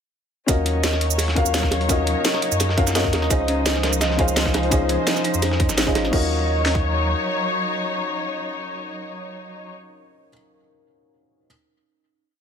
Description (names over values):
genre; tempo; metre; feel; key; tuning
liquid drum and bass; 170 BPM; 4/4; straight; Eb dorian; A4 = 440 Hz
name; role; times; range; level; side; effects
dark baby grand piano; accompaniment; 0.5-11.5 s; Db4 to F5; -25 LUFS; left 2 dB; dub echo
muted studio string section; sustained chords; 0.5-9.7 s; F3 to Db5; -26 LUFS; left 2 dB; sidechain pumping
warm sub bass; bass; 0.5-7.1 s; Ab1 to Gb2; -24 LUFS; equal; none
drum and bass drum kit; drums; 0.5-6.8 s; kick drum, snare drum; -22 LUFS; equal; small room ambience
drum and bass drum kit; drums; 0.5-6.2 s; crash cymbal, hi-hat, shaker, snare drum; -25 LUFS; right 1 dB; small room ambience
dusty soul sampler-style drum kit; drums; 0.5-6.0 s; hi-hat, snare drum; -28 LUFS; equal; high-pass filter on hats, small room ambience, high-pass filter on snare
bongos; percussion; 1.2-6.0 s; none; -30 LUFS; right 3 dB; none
kalimba; arpeggios; 3.3-6.3 s; Db4 to Eb5; -29 LUFS; right 5 dB; dub echo
room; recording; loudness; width
light reverb, small room ambience; none; -18 LUFS; side -8 dB against mid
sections
0.5-6.1 drop; 6.1-9.0 final chord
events
drop 0.5-6.1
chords
0.5 Ebm7; 3.3 Dbmaj9; 6.1 Ebm7